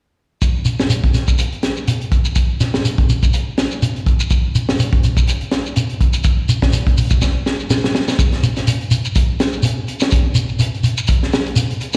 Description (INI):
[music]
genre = afrobeat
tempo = 124 BPM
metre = 4/4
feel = swing 55% on 16ths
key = none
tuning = none
[part]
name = crunchy breakbeat drum kit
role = drums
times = 0.4-12.0 s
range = hi-hat, kick drum, snare drum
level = -19 LUFS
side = equal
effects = none
[part]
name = shekere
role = percussion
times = 0.4-12.0 s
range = none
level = -22 LUFS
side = equal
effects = slapback echo
[sound]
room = moderate lush hall reverb, RT60 1.9 s, small room ambience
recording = live gig heard through the venue's PA, recital hall reverb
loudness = -17 LUFS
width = mono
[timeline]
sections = 0.4-8.2 A section; 8.2-12.0 B section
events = drum fill 7.2-8.2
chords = none